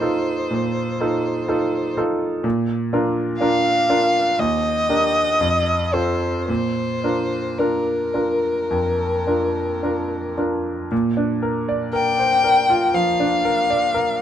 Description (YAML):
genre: classical, romantic duo for violin and grand piano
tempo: 53-63 BPM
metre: 4/4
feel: rubato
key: Bb major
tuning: A4 = 440 Hz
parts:
  - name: warm violin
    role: melody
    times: 0.0-14.2 s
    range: Bb4 to G5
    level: -20 LUFS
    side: left 2 dB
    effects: none
  - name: bright grand piano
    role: accompaniment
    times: 0.0-14.2 s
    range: Eb2 to D5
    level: -21 LUFS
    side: right 1 dB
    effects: none
room: light reverb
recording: dark, warm production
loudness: -18 LUFS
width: side -10 dB against mid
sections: 0.0-10.9 A section; 10.9-14.2 A section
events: none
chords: 0.0 F7/Bb; 2.4 Bb; 4.4 Ebmaj7; 5.4 F7; 6.5 Bb